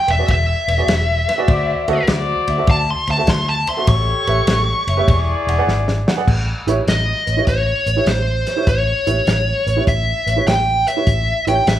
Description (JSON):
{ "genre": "electric blues shuffle", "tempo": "100 BPM", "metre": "4/4", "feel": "swing 67% on 8ths", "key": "A mixolydian", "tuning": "A4 = 440 Hz", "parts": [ { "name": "smooth overdriven lead guitar", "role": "melody", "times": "0.0-11.8 s", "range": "C5 to C#6", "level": "-18 LUFS", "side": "left 1 dB", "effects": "none" }, { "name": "warm upright piano", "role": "accompaniment", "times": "0.1-11.6 s", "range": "E4 to F#5", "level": "-23 LUFS", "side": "right 4 dB", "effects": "none" }, { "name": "vintage muted fingered electric bass", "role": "bass", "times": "0.1-11.8 s", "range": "E1 to D2", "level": "-20 LUFS", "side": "equal", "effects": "none" }, { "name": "warm soul drum kit", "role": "drums", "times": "0.1-11.8 s", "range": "crash cymbal, hi-hat, kick drum, ride cymbal, snare drum", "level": "-20 LUFS", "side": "equal", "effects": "none" }, { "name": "dark horn section", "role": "stabs", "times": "1.5-6.1 s", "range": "E4 to D5", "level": "-22 LUFS", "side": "left 3 dB", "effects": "none" } ], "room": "moderate large studio reverb, RT60 1.1 s", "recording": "band playing live in one room", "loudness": "-14 LUFS", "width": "side -12 dB against mid", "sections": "0.0-6.3 A section; 6.3-11.8 B section", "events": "lead electric guitar solo 0.0-6.3; drum fill 5.7-6.3", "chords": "0.0 E7; 1.5 D7; 3.9 A7; 5.1 E7; 6.3 A7" }